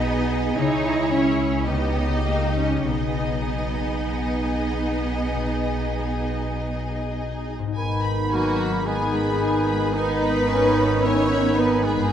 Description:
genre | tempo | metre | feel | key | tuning
classical, slow romantic movement for symphony orchestra | 47-56 BPM | 4/4 | rubato | G# minor | A4 = 439 Hz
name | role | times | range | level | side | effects
rich symphonic violin section | melody | 0.0-12.1 s | C#5 to B5 | -32 LUFS | left 3 dB | none
warm symphonic violin section | second line | 0.0-12.1 s | F#4 to C#5 | -28 LUFS | left 2 dB | none
clear symphonic viola section | accompaniment | 0.0-12.1 s | B3 to E4 | -29 LUFS | right 3 dB | none
concert harp | arpeggios | 0.0-12.1 s | G2 to D#5 | -30 LUFS | left 7 dB | none
rich symphonic cello section | bass | 0.0-12.1 s | F#3 to D#4 | -27 LUFS | right 3 dB | none
rich symphonic double bass section | bass | 0.0-12.1 s | G#1 to C#2 | -28 LUFS | right 2 dB | none
mellow clarinet | second line | 7.8-12.1 s | D#4 | -28 LUFS | equal | none
mellow large flute ensemble | second line | 7.8-12.1 s | B5 | -30 LUFS | right 1 dB | none
mellow bassoon | accompaniment | 7.8-12.1 s | D#3 | -30 LUFS | right 1 dB | none
warm French horn section | sustained chords | 7.8-12.1 s | B3 to D#4 | -28 LUFS | left 3 dB | none
warm oboe | second line | 8.3-12.1 s | A#3 to E4 | -30 LUFS | right 1 dB | none
room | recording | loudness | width
wet scoring stage reverb, RT60 1.6 s | dark, warm production | -20 LUFS | side -9 dB against mid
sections
0.0-7.8 A section; 7.8-12.1 A section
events
none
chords
0.0 G#m/B; 0.6 C#m; 1.7 D#7/C#; 2.9 G#m/B; 7.8 G#m

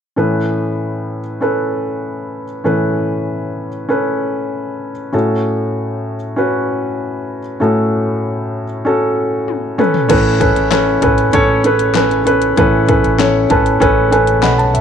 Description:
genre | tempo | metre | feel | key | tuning
piano-driven pop | 97 BPM | 4/4 | straight | unclear | A4 = 440 Hz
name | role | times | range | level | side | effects
dark upright piano | accompaniment | 0.2-14.8 s | A2 to B5 | -14 LUFS | equal | none
pop drum kit | drums | 9.5-14.8 s | crash cymbal, handclaps, hi-hat, kick drum, snare drum, toms | -19 LUFS | left 4 dB | none
upright bass | bass | 10.1-14.8 s | G#1 to B1 | -19 LUFS | right 1 dB | none
room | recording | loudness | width
moderate plate reverb, RT60 1.3 s | 1960s-style stereo | -13 LUFS | side -8 dB against mid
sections
0.2-10.1 A section; 10.1-14.8 B section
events
drum fill 9.5-10.1; upright piano fill 13.2-14.8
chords
0.2 Aadd9; 5.1 F#m/A; 9.8 Aadd9

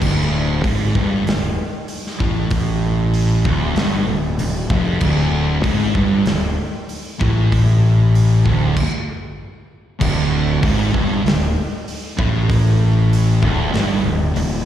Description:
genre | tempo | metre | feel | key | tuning
stoner and doom metal | 96 BPM | 4/4 | straight | unclear | A4 = 443 Hz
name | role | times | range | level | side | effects
thick fuzz guitar | riff | 0.0-14.6 s | D2 to A2 | -20 LUFS | left 4 dB | distortion, slapback echo
thick fuzz guitar | riff | 0.0-14.6 s | D2 to A2 | -21 LUFS | right 6 dB | distortion
fuzz fingered electric bass | bass | 0.0-14.6 s | D1 to A1 | -21 LUFS | equal | overdrive
big rock drum kit | drums | 0.0-14.5 s | crash cymbal, hi-hat, kick drum, snare drum | -22 LUFS | equal | none
thick fuzz guitar | riff | 5.0-14.6 s | D2 to A2 | -23 LUFS | right 1 dB | none
room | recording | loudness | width
little or no reverb | live gig heard through the venue's PA, recital hall reverb | -15 LUFS | side -11 dB against mid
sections
0.0-10.0 A section; 10.0-14.7 A section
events
stop 8.8-10.0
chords
0.0 D5

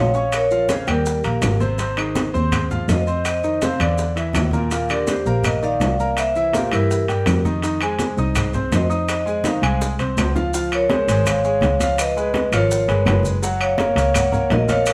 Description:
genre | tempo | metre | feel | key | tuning
latin, salsa | 165 BPM | 4/4 | straight | F minor | A4 = 440 Hz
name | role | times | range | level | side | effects
vibraphone with medium mallets | melody | 0.0-14.9 s | G4 to Gb5 | -24 LUFS | equal | none
bright grand piano | accompaniment | 0.0-14.9 s | Bb2 to Eb6 | -27 LUFS | equal | none
warm double bass | bass | 0.0-14.9 s | Gb1 to G2 | -24 LUFS | equal | none
congas | percussion | 0.1-14.9 s | none | -30 LUFS | equal | none
maracas | percussion | 0.1-14.9 s | none | -37 LUFS | equal | none
bongos | percussion | 0.3-14.9 s | none | -33 LUFS | equal | none
claves | percussion | 0.3-14.9 s | none | -33 LUFS | equal | none
timbales | percussion | 0.3-14.9 s | none | -30 LUFS | equal | none
room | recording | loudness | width
moderate studio reverb, RT60 0.9 s | none | -19 LUFS | mono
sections
0.0-10.5 A section; 10.5-14.9 B section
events
drum fill 9.8-10.5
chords
0.3 Bbm7; 1.1 Eb; 1.8 Ab6; 3.3 F5; 4.0 Dsus2; 4.7 Ebmaj7; 6.2 C7; 7.6 Fm7; 10.5 Dbmaj7; 12.0 Db7; 13.4 Gbmaj7

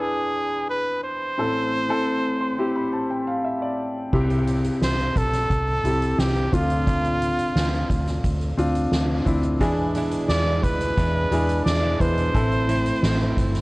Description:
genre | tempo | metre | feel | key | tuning
piano-driven pop | 88 BPM | 4/4 | straight | C major | A4 = 440 Hz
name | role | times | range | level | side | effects
bright trumpet | melody | 0.0-13.6 s | F4 to D5 | -25 LUFS | right 1 dB | plate reverb
warm grand piano | accompaniment | 0.0-13.6 s | A1 to C6 | -25 LUFS | left 1 dB | none
vintage muted fingered electric bass | bass | 4.1-13.6 s | G1 to E2 | -24 LUFS | equal | none
soft-mallet drum kit | drums | 4.1-13.6 s | crash cymbal, hi-hat, kick drum, snare drum | -26 LUFS | equal | none
direct-recorded clean electric guitar | riff | 9.6-13.6 s | E2 to E4 | -29 LUFS | right 3 dB | spring reverb
room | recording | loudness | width
moderate small room reverb, RT60 0.6 s | worn, warbling old tape, cassette tape, warbly pitch drift | -20 LUFS | side -22 dB against mid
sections
0.0-4.1 A section; 4.1-13.6 B section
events
grand piano fill 2.1-4.1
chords
0.0 E7; 1.4 Am; 4.1 C; 6.5 Dm7; 9.6 E7; 12.3 Am

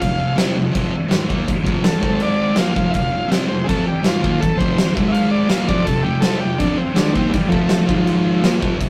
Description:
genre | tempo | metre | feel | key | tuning
garage rock duo or trio | 164 BPM | 4/4 | straight | unclear | A4 = 440 Hz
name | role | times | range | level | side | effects
overdriven combo organ | melody | 0.0-8.6 s | F3 to F5 | -23 LUFS | equal | none
thick fuzz guitar | riff | 0.0-8.9 s | F2 to Eb4 | -22 LUFS | equal | distortion
oversized low-tuned drum kit | drums | 0.0-8.9 s | crash cymbal, kick drum, snare drum | -22 LUFS | equal | none
room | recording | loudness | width
light reverb | rough rehearsal-room recording | -18 LUFS | mono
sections
0.0-8.9 A section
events
transistor combo organ solo 0.0-8.9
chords
0.0 F5; 2.0 Ab5; 2.6 F5; 5.0 Ab5; 5.5 F; 7.9 Ab5

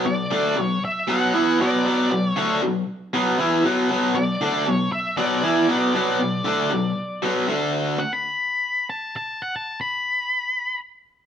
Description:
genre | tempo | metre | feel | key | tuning
rock | 117 BPM | 4/4 | straight | B minor | A4 = 441 Hz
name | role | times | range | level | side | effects
raw garage guitar | riff | 0.0-8.0 s | B2 to E4 | -20 LUFS | equal | overdrive
octave-fuzz lead guitar | melody | 0.1-10.8 s | D5 to B5 | -25 LUFS | left 1 dB | distortion
room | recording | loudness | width
moderate stone room reverb, RT60 1.1 s | band playing live in one room | -20 LUFS | side -8 dB against mid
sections
0.0-8.0 A section; 8.0-11.3 B section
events
lead electric guitar solo 8.0-11.3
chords
0.0 Bm; 7.5 D5; 8.0 N.C.

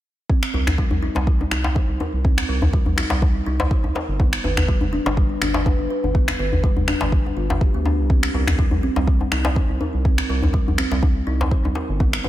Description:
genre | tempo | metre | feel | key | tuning
afro house | 123 BPM | 4/4 | swing 54% on 16ths | C minor | A4 = 443 Hz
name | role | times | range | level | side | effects
kalimba | arpeggios | 0.3-12.3 s | G3 to C5 | -26 LUFS | equal | sidechain pumping, tape echo
electronic kick drum | drums | 0.3-12.1 s | none | -19 LUFS | equal | small room ambience
electronic finger snaps | drums | 0.4-12.2 s | none | -27 LUFS | left 1 dB | small room ambience
round analog bass | bass | 0.5-12.3 s | F1 to D2 | -24 LUFS | equal | sidechain pumping
djembe | percussion | 0.5-12.3 s | none | -24 LUFS | left 1 dB | none
room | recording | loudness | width
light reverb, small room ambience | none | -18 LUFS | side -14 dB against mid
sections
0.3-12.3 A section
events
none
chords
0.3 Cm7; 4.2 G7; 8.1 C7(no3)

